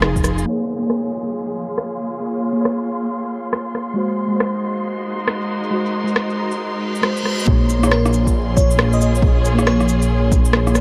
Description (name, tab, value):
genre	future garage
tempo	137 BPM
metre	4/4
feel	swing 62% on 16ths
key	Bb minor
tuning	A4 = 441 Hz
part	muted felt-like synth keys	accompaniment	0.0-10.8 s	F3 to Db5	-24 LUFS	equal	chorus, sidechain pumping, delay
part	dark studio string section	sustained chords	0.0-10.8 s	F3 to C6	-28 LUFS	equal	sidechain pumping
part	swelling detuned saw bass	bass	0.0-0.4, 7.5-10.8 s	F1 to Bb1	-20 LUFS	equal	sidechain pumping
part	electronic rim click, shaker and cabasa	drums	0.0-10.8 s	none	-24 LUFS	equal	none
part	wind-like tuned noise texture	texture	0.0-7.5 s	Bb4 to F5	-41 LUFS	equal	built-in reverb
part	electronic kick drum	drums	0.2, 7.5-10.4 s	none	-19 LUFS	equal	none
part	downlifter and reverse cymbal	sound effects	0.5-4.0, 6.8-7.5 s	none	-34 LUFS	equal	none
part	bell-like FM electric piano	melody	7.9-10.3 s	Bb4 to Eb5	-28 LUFS	equal	chorus, tremolo, delay
room	light reverb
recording	vinyl crackle, low-pass filter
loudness	-19 LUFS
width	mono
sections	0.5-7.5 A section; 7.5-10.8 B section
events	band accent 0.0; filter sweep 0.5-7.5; reverse cymbal 6.8-7.5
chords	0.5 Bbm7; 4.0 Ab7; 7.5 Bbm7